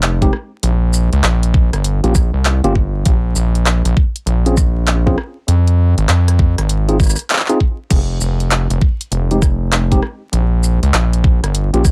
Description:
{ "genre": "glitch hop", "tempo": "99 BPM", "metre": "4/4", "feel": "swing 64% on 16ths", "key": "unclear", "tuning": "A4 = 440 Hz", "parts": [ { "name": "gritty driven synth bass", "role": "bass", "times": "0.0-11.9 s", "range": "F1 to F2", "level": "-16 LUFS", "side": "equal", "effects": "tube saturation" }, { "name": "pop drum kit", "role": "drums", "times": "0.0-11.9 s", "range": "crash cymbal, handclaps, hi-hat, rim click, shaker", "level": "-22 LUFS", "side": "equal", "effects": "overdrive" }, { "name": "mellow tine electric piano", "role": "stabs", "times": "0.2-11.8 s", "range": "Ab3 to Ab4", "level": "-21 LUFS", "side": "equal", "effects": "sidechain pumping, digital delay" }, { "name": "electronic kick drum", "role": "drums", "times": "0.2-11.9 s", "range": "none", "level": "-16 LUFS", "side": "equal", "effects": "overdrive" } ], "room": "little or no reverb", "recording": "vinyl crackle", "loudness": "-15 LUFS", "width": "mono", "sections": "0.0-11.9 A section", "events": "none", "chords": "0.0 Fm7; 0.6 Gdim; 3.1 N.C.; 5.5 Ab5; 7.9 N.C.; 10.3 Gdim" }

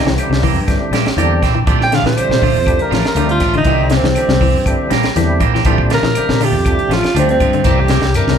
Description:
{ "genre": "afrobeat", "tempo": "120 BPM", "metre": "4/4", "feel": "straight", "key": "C mixolydian", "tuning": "A4 = 440 Hz", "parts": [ { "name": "clear alto saxophone", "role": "melody", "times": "0.0-8.4 s", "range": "C4 to G5", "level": "-17 LUFS", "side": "right 2 dB", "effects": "none" }, { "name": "clean electric guitar", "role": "stabs", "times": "0.0-8.1 s", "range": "E3 to G4", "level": "-21 LUFS", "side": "right 6 dB", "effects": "spring reverb" }, { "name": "fingered electric bass", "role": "bass", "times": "0.0-8.4 s", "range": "A1 to G2", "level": "-17 LUFS", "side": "equal", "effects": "none" }, { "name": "clean electric guitar", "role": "arpeggios", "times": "0.1-8.4 s", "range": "C3 to G3", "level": "-21 LUFS", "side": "left 6 dB", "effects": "none" }, { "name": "tight funk drum kit", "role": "drums", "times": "0.1-8.4 s", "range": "hi-hat, kick drum, snare drum", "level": "-18 LUFS", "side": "equal", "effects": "none" }, { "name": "percussive tonewheel organ", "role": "accompaniment", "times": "0.2-8.4 s", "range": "D3 to E4", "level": "-22 LUFS", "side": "right 1 dB", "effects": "chorus vibrato, slow rotary speaker" }, { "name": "claves", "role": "percussion", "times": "0.2-8.3 s", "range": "none", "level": "-32 LUFS", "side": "left 4 dB", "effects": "none" }, { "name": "shekere", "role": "percussion", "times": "7.6-8.4 s", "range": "none", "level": "-21 LUFS", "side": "left 3 dB", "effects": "none" } ], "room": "moderate large studio reverb, RT60 1.2 s", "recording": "band playing live in one room", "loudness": "-12 LUFS", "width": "side -8 dB against mid", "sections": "0.0-8.4 A section", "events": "alto saxophone solo 0.0-8.4", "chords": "0.0 C7; 1.7 Bbmaj7; 3.7 C7; 5.7 Bbmaj7; 7.7 C7" }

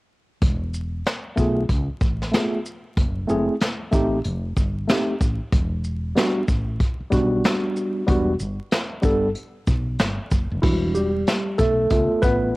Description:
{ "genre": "hip hop, jazz-hop", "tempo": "94 BPM", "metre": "4/4", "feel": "swing 62% on 16ths", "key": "unclear", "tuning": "A4 = 441 Hz", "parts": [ { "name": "woody fretless electric bass", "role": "bass", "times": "0.4-12.5 s", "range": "E1 to C#2", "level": "-26 LUFS", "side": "equal", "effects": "none" }, { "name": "vintage brush drum kit", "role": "drums", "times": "0.4-12.4 s", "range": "crash cymbal, hi-hat, kick drum, shaker, snare drum", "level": "-22 LUFS", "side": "equal", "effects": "cassette tape" }, { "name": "tine electric piano", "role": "accompaniment", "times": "1.4-12.6 s", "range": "E3 to B4", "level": "-21 LUFS", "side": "equal", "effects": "medium stereo tremolo, cassette tape" } ], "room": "light reverb, small room ambience", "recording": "home recording on cassette, vinyl crackle", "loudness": "-20 LUFS", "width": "side -21 dB against mid", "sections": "0.4-10.6 A section; 10.6-12.6 A section", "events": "tine electric piano solo 10.6-12.6", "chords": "0.4 E5; 1.7 C#7b13; 3.0 F#m7b5; 4.2 F9; 5.5 Em7; 11.9 C#7b13" }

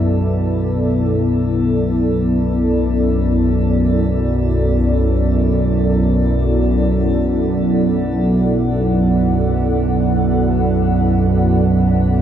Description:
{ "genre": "dark ambient drone", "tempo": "free time", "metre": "none", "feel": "none", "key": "B minor", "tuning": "A4 = 440 Hz", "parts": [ { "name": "dark analog pad", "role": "sustained chords", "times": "0.0-12.2 s", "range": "B3 to G5", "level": "-18 LUFS", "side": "equal", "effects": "chorus, shimmer reverb" }, { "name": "analog drone", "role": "drone", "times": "0.0-12.2 s", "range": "B1 to F#2", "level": "-16 LUFS", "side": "right 1 dB", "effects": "chorus" }, { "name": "metallic inharmonic drone", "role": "texture", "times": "0.0-1.2 s", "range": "A4", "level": "-47 LUFS", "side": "equal", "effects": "chorus, built-in reverb, shimmer reverb" } ], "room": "wet cathedral reverb, RT60 6.6 s", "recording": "dark, warm production", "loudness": "-14 LUFS", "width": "side -10 dB against mid", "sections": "0.0-1.2 A section; 1.2-12.2 B section", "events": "none", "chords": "0.0 Em/B; 1.2 Bm7" }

